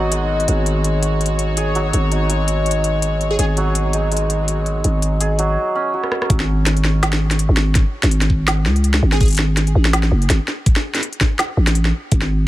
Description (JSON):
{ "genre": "half-time drum and bass", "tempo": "165 BPM", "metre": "4/4", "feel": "swing 55% on 16ths, half-time", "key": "G# minor", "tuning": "A4 = 439 Hz", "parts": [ { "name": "warm chamber string section", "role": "sustained chords", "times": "0.0-5.6 s", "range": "D#3 to D#5", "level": "-25 LUFS", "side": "left 2 dB", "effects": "sidechain pumping" }, { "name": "santur", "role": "arpeggios", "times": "0.0-9.6 s", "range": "F#3 to G#4", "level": "-22 LUFS", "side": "right 1 dB", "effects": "dub echo" }, { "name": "growling 808-style bass", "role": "bass", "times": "0.0-12.5 s", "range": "F#1 to C#2", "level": "-17 LUFS", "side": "equal", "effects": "none" }, { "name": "organic electronic drum kit", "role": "drums", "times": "0.1-12.3 s", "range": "hi-hat, rim click, snare drum", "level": "-21 LUFS", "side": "equal", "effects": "none" }, { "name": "plucky unison lead", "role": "melody", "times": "3.3-3.5, 9.1-9.3 s", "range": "G#4", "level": "-28 LUFS", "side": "right 1 dB", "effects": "dub echo" }, { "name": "electronic kick drum", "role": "drums", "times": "6.3-12.2 s", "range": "none", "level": "-16 LUFS", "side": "equal", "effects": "none" } ], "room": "light reverb", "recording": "none", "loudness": "-15 LUFS", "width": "side -16 dB against mid", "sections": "0.0-6.3 A section; 6.3-12.5 B section", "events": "drum fill 6.0; drop 6.3-12.5", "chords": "0.0 G#m; 6.3 G#5" }